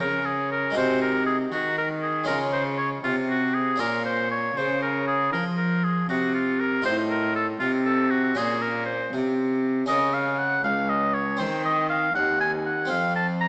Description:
classical, baroque-style sonata movement with continuo; 79 BPM (dotted quarters); 12/8; straight; Bb minor from 9.9 s; A4 = 440 Hz
clear oboe; melody; 0.0-13.5 s; F4 to Bb5; -27 LUFS; equal
harpsichord; accompaniment; 0.0-13.5 s; Db2 to C5; -32 LUFS; equal
rich cello; bass; 0.0-13.5 s; Db2 to F3; -29 LUFS; equal
wet scoring stage reverb, RT60 1.7 s; vinyl crackle, small speaker sound; -24 LUFS; mono
0.0-13.5 A section
0.0 Db; 0.8 Ab7/C; 2.3 Db; 3.8 Bbm; 6.9 F7/A; 8.4 Bbm; 9.9 Bbm/Db; 11.4 Ebm6; 12.9 F

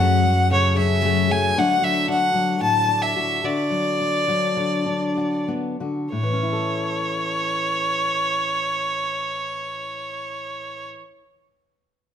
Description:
indie folk with a building arrangement; 91-115 BPM; 4/4; straight; A major; A4 = 440 Hz
clear fiddle; melody; 0.0-10.9 s; C#5 to A5; -22 LUFS; equal; slapback echo
fingerpicked steel-string acoustic guitar; accompaniment; 0.0-11.3 s; F#2 to A4; -25 LUFS; left 2 dB
picked twelve-string acoustic guitar; accompaniment; 0.0-1.6 s; F#2 to G#4; -25 LUFS; left 10 dB
upright bass; bass; 0.0-1.5 s; F#2; -21 LUFS; right 1 dB
light reverb; -20 LUFS; side -9 dB against mid
0.0-6.1 A section; 6.1-11.4 B section
slowing down 1.5-6.1
0.0 F#madd9; 1.5 D; 3.4 Bm/D (rootless); 6.1 A

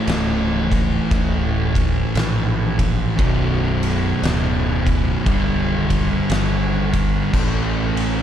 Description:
stoner and doom metal; 58 BPM; 4/4; swing 62% on 8ths; A4 = 441 Hz
thick fuzz guitar; riff; 0.0-8.2 s; B1 to A3; -23 LUFS; left 9 dB; distortion
thick fuzz guitar; riff; 0.0-8.2 s; B1 to A3; -23 LUFS; right 9 dB; distortion
growling fingered electric bass; bass; 0.1-8.2 s; B0 to A#1; -23 LUFS; equal; overdrive, tube saturation
oversized low-tuned drum kit; drums; 0.1-8.2 s; crash cymbal, kick drum, ride cymbal, snare drum; -22 LUFS; equal
little or no reverb; dark, warm production; -17 LUFS; side -10 dB against mid
0.0-8.2 A section
0.0 A; 3.2 Bm; 5.3 G/B; 7.3 A5

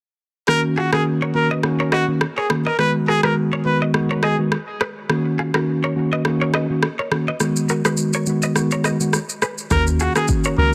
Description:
afrobeats; 104 BPM; 4/4; swing 55% on 16ths; Eb minor; A4 = 440 Hz
clear trumpet; melody; 0.5-4.4, 9.7-10.7 s; Gb4 to Cb5; -24 LUFS; equal; tape echo
mellow tine electric piano; accompaniment; 0.5-10.7 s; Eb3 to Gb4; -22 LUFS; equal; subtle chorus
afro-pop drum kit; drums; 0.5-10.6 s; kick drum, rim click, shaker; -25 LUFS; equal; soft clipping on snare
direct-recorded clean electric guitar; riff; 0.8-10.5 s; F4 to Eb5; -29 LUFS; equal; lush chorus, tape echo
deep log drum bass; bass; 9.7-10.7 s; Db2 to Eb2; -21 LUFS; equal
light reverb; dense, heavily limited modern master; -20 LUFS; mono
0.5-10.7 A section
kick muted 0.5-9.7
0.5 Ebm7; 2.8 Abm7; 5.1 Ebm7; 7.4 Abm7; 9.7 Ebm7

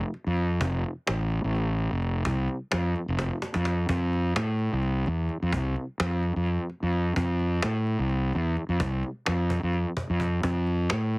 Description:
progressive instrumental, band music in an uneven meter; 256 BPM (eighths); 7/8; straight; F major; A4 = 440 Hz
cajon; drums; 0.1-11.2 s; -31 LUFS; equal
fuzz fingered electric bass; bass; 0.3-11.2 s; F1 to A2; -25 LUFS; equal; overdrive
little or no reverb; heavily compressed radio sound; -25 LUFS; side -30 dB against mid
0.0-3.9 A section; 3.9-11.2 B section
drum fill 3.2-3.9

